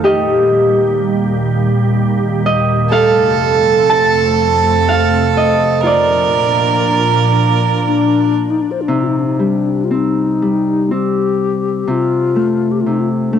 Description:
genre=celtic folk, Celtic slow air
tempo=61 BPM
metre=3/4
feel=rubato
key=C dorian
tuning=A4 = 441 Hz
part: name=Celtic harp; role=accompaniment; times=0.0-13.4 s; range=C3 to A5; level=-15 LUFS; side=equal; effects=cassette tape
part: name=soft additive organ-like pad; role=sustained chords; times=0.0-8.9 s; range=Eb2 to D4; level=-16 LUFS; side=right 1 dB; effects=ensemble chorus, built-in reverb, cassette tape
part: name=rich fiddle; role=second line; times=2.9-8.4 s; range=A4 to Bb4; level=-15 LUFS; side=right 10 dB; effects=cassette tape
part: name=mellow hollow wooden flute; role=melody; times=7.9-13.4 s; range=D4 to C5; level=-16 LUFS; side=left 5 dB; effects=cassette tape
room=moderate lush hall reverb, RT60 2.6 s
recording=home recording on cassette, faint mains hum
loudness=-12 LUFS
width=side -8 dB against mid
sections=0.0-8.9 A section; 8.9-13.4 B section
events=harp solo 0.0-8.9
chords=0.0 Eb; 2.9 F; 5.8 Bb; 8.9 Cm; 11.9 C5

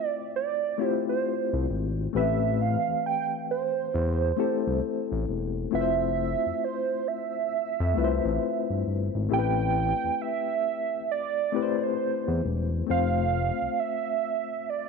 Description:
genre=R&B, neo-soul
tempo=67 BPM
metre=4/4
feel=swing 62% on 16ths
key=A minor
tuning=A4 = 440 Hz
part: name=hollow square lead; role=melody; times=0.0-14.9 s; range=C5 to G5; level=-28 LUFS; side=right 10 dB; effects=chorus, slapback echo
part: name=reed electric piano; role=accompaniment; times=0.0-14.9 s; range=E3 to C5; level=-30 LUFS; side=left 15 dB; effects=fast tremolo
part: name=smooth synth bass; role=bass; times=1.5-13.7 s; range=E1 to F2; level=-28 LUFS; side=left 1 dB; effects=none
room=light reverb, digital ambience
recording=1960s-style stereo with parts hard left and right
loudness=-25 LUFS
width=side -4 dB against mid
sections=0.0-14.9 A section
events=none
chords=0.0 Fmaj7; 2.1 Am9; 5.7 Fmaj7; 9.3 Am9; 12.9 Fmaj7

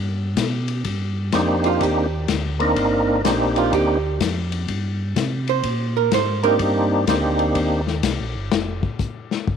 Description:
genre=soul jazz organ trio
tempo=125 BPM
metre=4/4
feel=swing 66% on 8ths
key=C minor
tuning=A4 = 440 Hz
part: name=mellow tonewheel organ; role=bass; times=0.0-8.8 s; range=F1 to C3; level=-24 LUFS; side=equal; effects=chorus vibrato, slow rotary speaker
part: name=vintage drum kit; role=drums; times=0.4-9.6 s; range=hi-hat, kick drum, ride cymbal, snare drum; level=-25 LUFS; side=left 7 dB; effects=none
part: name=percussive tonewheel organ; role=melody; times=1.3-7.8 s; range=Bb3 to Bb4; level=-20 LUFS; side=equal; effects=slow rotary speaker, overdrive, chorus vibrato
part: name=archtop guitar, miked and amplified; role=accompaniment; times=1.7-6.5 s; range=F4 to C5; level=-22 LUFS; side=right 13 dB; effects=none
room=moderate spring reverb, RT60 2.3 s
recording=1960s-style stereo with parts hard left and right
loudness=-18 LUFS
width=side -7 dB against mid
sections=0.9-9.6 A section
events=hollow-body jazz guitar solo 0.9-9.6; drum solo 8.5-9.6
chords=0.0 G; 0.9 Cm9; 8.5 N.C.

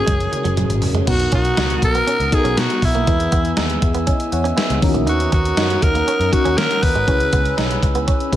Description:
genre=1980s-style pop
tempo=120 BPM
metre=4/4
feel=straight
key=unclear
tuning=A4 = 439 Hz
part: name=raspy alto saxophone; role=melody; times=0.0-7.6 s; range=E4 to B4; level=-20 LUFS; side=equal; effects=none
part: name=FM electric piano with soft pad layer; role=accompaniment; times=0.0-8.4 s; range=B2 to G#5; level=-23 LUFS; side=left 2 dB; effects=chorus, tremolo
part: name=direct-recorded clean electric guitar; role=riff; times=0.0-8.4 s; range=F#3 to D#4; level=-27 LUFS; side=right 6 dB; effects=lush chorus
part: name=vintage muted picked electric bass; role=bass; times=0.1-8.4 s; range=F#1 to D#3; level=-22 LUFS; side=equal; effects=none
part: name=gated 80s digital drum machine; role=drums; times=0.1-8.4 s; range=crash cymbal, hi-hat, kick drum, snare drum, toms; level=-20 LUFS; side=equal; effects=gated reverb, gated reverb snare
part: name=glass harmonica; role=sustained chords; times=1.1-8.4 s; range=B3 to E6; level=-28 LUFS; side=left 1 dB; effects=none
room=light reverb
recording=none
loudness=-15 LUFS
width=side -12 dB against mid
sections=0.0-1.1 A section; 1.1-8.4 B section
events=drum fill 0.1-1.1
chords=0.0 F#add9; 1.1 Bmaj7; 3.1 E; 4.8 D#m7; 7.1 C#m7

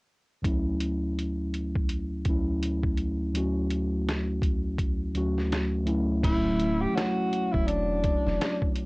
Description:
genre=lo-fi hip hop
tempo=83 BPM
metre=4/4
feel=swing 59% on 16ths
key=D major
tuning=A4 = 440 Hz
part: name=mellow tine electric piano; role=accompaniment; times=0.4-8.9 s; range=D2 to C#5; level=-27 LUFS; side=equal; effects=cassette tape, low-pass filter
part: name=lo-fi sampler-style drum kit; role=drums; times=0.4-8.9 s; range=crash cymbal, hi-hat, kick drum, snare drum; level=-29 LUFS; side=equal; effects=cassette tape
part: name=breathy tenor saxophone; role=melody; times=6.2-8.8 s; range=D4 to G4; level=-29 LUFS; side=equal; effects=low-pass filter, cassette tape, plate reverb
part: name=soft dub sub bass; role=bass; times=6.2-8.4 s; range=D1 to E1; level=-30 LUFS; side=equal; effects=transformer saturation
room=moderate booth ambience, RT60 0.2 s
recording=home recording on cassette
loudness=-25 LUFS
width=side -26 dB against mid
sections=0.4-6.2 A section; 6.2-8.9 B section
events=none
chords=0.4 Dmaj9

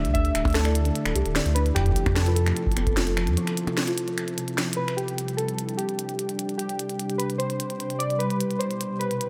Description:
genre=IDM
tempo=149 BPM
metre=4/4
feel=straight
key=unclear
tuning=A4 = 440 Hz
part: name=warbly lo-fi synth keys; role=melody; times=0.0-9.3 s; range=G4 to E5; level=-32 LUFS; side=equal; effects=chorus, tape echo
part: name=glassy FM pad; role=sustained chords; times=0.0-9.3 s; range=B2 to A4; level=-34 LUFS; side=equal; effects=ensemble chorus, built-in reverb
part: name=warm sub bass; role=bass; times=0.0-3.4 s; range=D1 to F2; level=-26 LUFS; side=equal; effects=none
part: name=glitchy drum kit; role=drums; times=0.0-9.3 s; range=finger snaps, hi-hat, percussion blips, snare drum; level=-32 LUFS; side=equal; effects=none
part: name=kalimba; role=arpeggios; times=0.1-4.8 s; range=C3 to D5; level=-33 LUFS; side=equal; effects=digital delay
part: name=electronic kick drum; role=drums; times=0.1-2.9 s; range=none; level=-28 LUFS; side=equal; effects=none
room=light reverb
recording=none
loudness=-25 LUFS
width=mono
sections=0.0-5.0 A section; 5.0-9.3 B section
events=break 3.4-5.0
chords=0.0 Dsus2; 1.8 Fmaj7; 5.0 Csus2; 8.2 Em

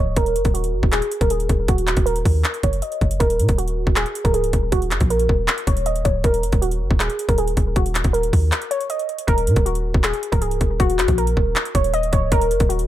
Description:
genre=hip hop, trap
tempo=158 BPM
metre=4/4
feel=half-time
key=Eb minor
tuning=A4 = 439 Hz
part: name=warbly dusty pluck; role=melody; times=0.0-12.9 s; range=Gb4 to Eb5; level=-22 LUFS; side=right 1 dB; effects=chorus, low-pass filter, ping-pong delay
part: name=warm 808-style bass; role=bass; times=0.0-12.9 s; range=Db1 to Bb2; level=-21 LUFS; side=equal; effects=none
part: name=trap drum kit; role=drums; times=0.2-12.9 s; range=handclaps, hi-hat, kick drum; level=-20 LUFS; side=equal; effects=overdrive
room=digital ambience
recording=none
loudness=-17 LUFS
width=side -13 dB against mid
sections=0.0-12.9 A section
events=filter sweep on synth pluck 0.0-9.3; break 8.5-9.3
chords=0.0 Ebm

